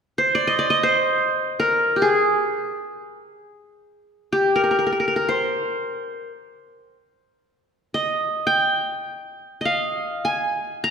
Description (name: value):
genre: turkish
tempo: free time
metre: none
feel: none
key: C makam nihavent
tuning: A4 = 440 Hz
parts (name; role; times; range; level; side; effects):
- qanun; melody; 0.2-10.9 s; G4 to Bb5; -19 LUFS; equal; none
room: wet scoring stage reverb, RT60 2.0 s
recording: recorded in a church or concert hall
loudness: -19 LUFS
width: side -6 dB against mid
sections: 0.0-10.9 A section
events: none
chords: none